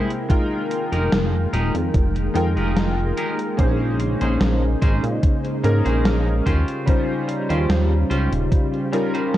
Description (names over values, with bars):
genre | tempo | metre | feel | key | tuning
vaporwave | 73 BPM | 4/4 | straight | Bb dorian | A4 = 437 Hz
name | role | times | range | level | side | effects
clear electric grand piano | accompaniment | 0.0-9.4 s | G3 to G5 | -24 LUFS | left 1 dB | analog chorus, tape echo
soft string machine | sustained chords | 0.0-9.4 s | C3 to G5 | -26 LUFS | equal | ensemble chorus
clean electric guitar | riff | 0.0-9.3 s | Db4 to C5 | -30 LUFS | equal | wide subtle chorus, tape echo
chorused synth bass | bass | 0.0-8.5 s | Eb1 to Bb2 | -21 LUFS | equal | none
gated 80s digital drum machine | drums | 0.1-9.4 s | hi-hat, snare drum | -24 LUFS | equal | gated reverb, gated reverb snare
electronic kick drum | drums | 0.3-8.7 s | none | -19 LUFS | equal | none
room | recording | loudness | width
light reverb, digital ambience | dark, warm production, cassette tape | -18 LUFS | side -13 dB against mid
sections
0.0-9.4 A section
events
none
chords
0.3 Fm11; 3.6 Bbm11; 6.5 Eb13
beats
| 0.30 1.12 1.94 2.76 | 3.59 4.41 5.23 6.05 | 6.87 7.70 8.52 9.34